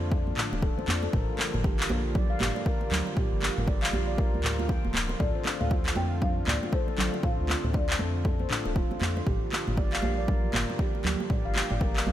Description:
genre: afro house.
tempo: 118 BPM.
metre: 4/4.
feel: swing 60% on 16ths.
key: unclear.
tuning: A4 = 441 Hz.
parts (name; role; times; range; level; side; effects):
folk marimba with medium mallets; melody; 0.0-0.8, 5.2-9.0 s; C5 to G5; -37 LUFS; left 3 dB; tape echo.
warm analog pad; sustained chords; 0.0-12.1 s; D3 to G4; -37 LUFS; right 1 dB; chorus, sidechain pumping.
round analog bass; bass; 0.0-12.1 s; D1 to F2; -31 LUFS; equal; sidechain pumping.
handpan; arpeggios; 0.1-11.9 s; D4 to G5; -34 LUFS; equal; vintage 12-bit sampler grit, sidechain pumping, tape echo.
electronic kick drum; drums; 0.1-11.9 s; none; -28 LUFS; equal; overdrive, studio reverb.
congas; percussion; 0.1-12.1 s; none; -35 LUFS; right 3 dB; none.
afro-pop drum kit; drums; 0.4-12.0 s; handclaps, toms; -31 LUFS; equal; studio reverb.
room: studio ambience.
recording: none.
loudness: -25 LUFS.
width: side -12 dB against mid.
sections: 0.0-12.1 A section.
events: none.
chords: 0.0 Dm; 1.1 Gm7; 5.2 Dm7; 9.3 Gm7.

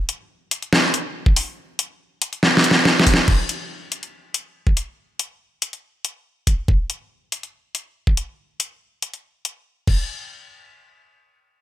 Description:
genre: dubstep.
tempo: 141 BPM.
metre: 4/4.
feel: half-time.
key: none.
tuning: none.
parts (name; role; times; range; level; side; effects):
dubstep drum kit; drums; 0.1-10.0 s; crash cymbal, hi-hat, snare drum; -18 LUFS; equal; none.
electronic kick drum; drums; 1.3-10.0 s; none; -17 LUFS; equal; none.
room: light reverb.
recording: none.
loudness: -19 LUFS.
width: side -13 dB against mid.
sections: 0.0-3.3 A section; 3.3-10.1 B section; 10.1-11.6 C section.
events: drop 0.0-3.3; drum fill 2.4-3.3.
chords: none.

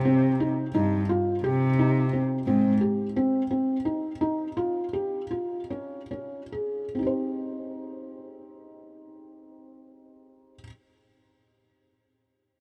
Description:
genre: contemporary instrumental, chamber music in an uneven meter.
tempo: 134-176 BPM (eighths).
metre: 5/8.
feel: straight.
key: C phrygian.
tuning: A4 = 444 Hz.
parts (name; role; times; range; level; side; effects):
dark cello; bass; 0.0-2.7 s; G2 to C3; -27 LUFS; equal; none.
felt-muted upright piano; arpeggios; 0.1-10.7 s; C4 to C5; -30 LUFS; equal; none.
room: light reverb.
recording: none.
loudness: -27 LUFS.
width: mono.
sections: 0.0-6.9 A section; 6.9-11.4 B section.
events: slowing down 3.1-6.9.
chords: 0.0 Cm; 3.1 Cmadd11; 6.9 Cm.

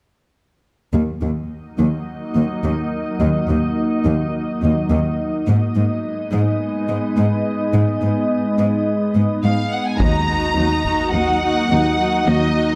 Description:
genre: cinematic, hybrid orchestral and electronic film score.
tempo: 106 BPM.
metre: 4/4.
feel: straight.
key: Eb minor.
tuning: A4 = 440 Hz.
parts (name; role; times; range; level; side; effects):
glassy FM pad; sustained chords; 1.9-12.8 s; Gb3 to Eb5; -23 LUFS; equal; ensemble chorus, built-in reverb.
rich symphonic cello section; bass; 0.9-12.7 s; Eb2 to Ab2; -22 LUFS; equal; none.
rich symphonic violin section; melody; 9.4-12.8 s; Eb5 to Bb5; -23 LUFS; equal; none.
rich studio viola section; accompaniment; 10.0-12.8 s; Eb4 to Gb4; -25 LUFS; equal; none.
taiko ensemble; drums; 10.0-11.1 s; none; -27 LUFS; equal; none.
room: wet scoring stage reverb, RT60 1.8 s.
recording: none.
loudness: -19 LUFS.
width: mono.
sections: 0.9-10.0 A section; 10.0-12.8 B section.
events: none.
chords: 0.9 Ebm; 5.5 Abm; 10.0 Ebm.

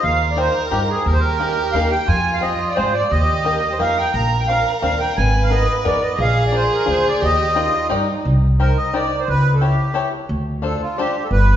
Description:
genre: musette waltz.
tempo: 176 BPM.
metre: 3/4.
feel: straight.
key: Eb major.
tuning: A4 = 440 Hz.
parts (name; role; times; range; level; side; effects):
accordion; melody; 0.0-11.6 s; F4 to Bb5; -20 LUFS; right 1 dB; light tremolo tuning.
clear violin; second line; 0.0-8.2 s; Eb4 to C5; -24 LUFS; right 2 dB; none.
upright bass; bass; 0.0-11.6 s; G1 to Ab2; -19 LUFS; equal; none.
bluegrass banjo; accompaniment; 0.4-11.2 s; Bb3 to D5; -25 LUFS; left 4 dB; none.
room: wet recital hall reverb, RT60 1.8 s.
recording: recorded in a church or concert hall, nothing above 7.6 kHz.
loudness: -16 LUFS.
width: side -10 dB against mid.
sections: 0.0-8.2 A section; 8.2-11.6 B section.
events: none.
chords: 0.0 Ebadd9; 1.1 Absus2/Eb; 2.1 Fm; 3.1 Eb; 4.1 Bbadd9; 5.2 Abmadd9; 6.2 Bb; 7.2 Ebmaj7; 8.2 Cm7; 9.3 A7/C#; 10.3 Dm7.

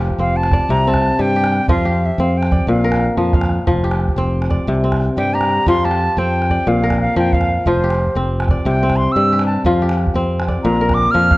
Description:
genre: west african traditional, West African string and xylophone music.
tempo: 120 BPM (dotted quarters).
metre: 12/8.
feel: straight.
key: unclear.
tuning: A4 = 441 Hz.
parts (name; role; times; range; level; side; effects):
kora; arpeggios; 0.0-11.4 s; Bb2 to F5; -18 LUFS; left 1 dB; none.
fingered electric bass; bass; 0.0-11.4 s; F1 to G2; -19 LUFS; equal; none.
calabash; percussion; 0.0-11.4 s; none; -22 LUFS; right 1 dB; none.
concert flute; melody; 0.2-11.4 s; C5 to F6; -19 LUFS; equal; none.
room: light reverb.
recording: worn, warbling old tape, cassette tape, warbly pitch drift.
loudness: -14 LUFS.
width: side -19 dB against mid.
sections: 0.0-11.4 A section.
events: flute solo 0.0-11.4.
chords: 0.0 F; 0.7 C5; 1.7 F5; 2.7 Bb; 3.7 F5; 4.7 C5; 5.7 F; 6.7 Bb; 7.7 F5; 8.7 C; 9.6 F5; 10.6 Bb.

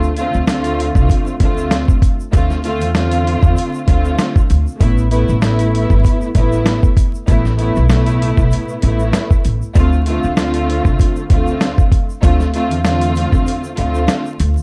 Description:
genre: hip hop, boom-bap hip-hop.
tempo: 97 BPM.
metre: 4/4.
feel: swing 56% on 16ths.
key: unclear.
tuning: A4 = 440 Hz.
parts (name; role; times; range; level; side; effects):
warm studio string section; accompaniment; 0.0-14.5 s; A2 to F4; -21 LUFS; equal; cassette tape, high-pass filter, low-pass filter.
upright bass; bass; 0.0-14.5 s; G1 to E2; -19 LUFS; equal; none.
egg shaker; percussion; 0.0-14.6 s; none; -46 LUFS; equal; none.
dusty soul sampler-style drum kit; drums; 0.2-14.6 s; hi-hat, kick drum, snare drum; -17 LUFS; equal; none.
room: little or no reverb.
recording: dark, warm production, vinyl crackle.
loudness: -15 LUFS.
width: mono.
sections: 0.0-14.6 A section.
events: break 13.5-14.6.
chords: 0.0 Dm7; 4.8 Asus2; 9.8 Dm7.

